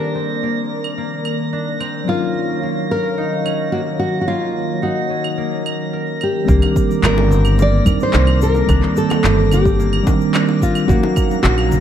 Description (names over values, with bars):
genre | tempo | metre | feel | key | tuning
sunset chillout | 109 BPM | 4/4 | straight | unclear | A4 = 439 Hz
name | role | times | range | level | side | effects
nylon-string guitar | melody | 0.0-11.8 s | F4 to D5 | -21 LUFS | left 1 dB | tape echo
mellow tine electric piano | accompaniment | 0.0-11.8 s | Eb3 to F5 | -21 LUFS | moving between left 5 dB and right 5 dB | auto-pan
airy breathy pad | sustained chords | 0.0-11.8 s | Eb3 to D6 | -26 LUFS | left 1 dB | chorus
concert harp | arpeggios | 0.0-11.8 s | Bb3 to Bb4 | -26 LUFS | left 2 dB | tape echo
drifting glass-harmonics texture | texture | 0.0-11.8 s | Bb6 | -30 LUFS | right 2 dB | chorus, built-in reverb
electronic claves, shaker and handclaps | drums | 0.8-11.8 s | none | -24 LUFS | right 1 dB | overdrive
upright bass | bass | 6.5-11.8 s | G1 to F2 | -16 LUFS | equal | none
electronic kick drum | drums | 6.5-11.3 s | none | -18 LUFS | equal | overdrive
bongos and congas | percussion | 6.6-11.8 s | none | -26 LUFS | left 2 dB | none
room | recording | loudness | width
light reverb | dark, warm production | -15 LUFS | side -10 dB against mid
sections
0.0-6.5 A section; 6.5-11.8 B section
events
none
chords
0.0 Cm9; 2.1 Ebm9; 6.5 Cm9; 10.9 Ebm9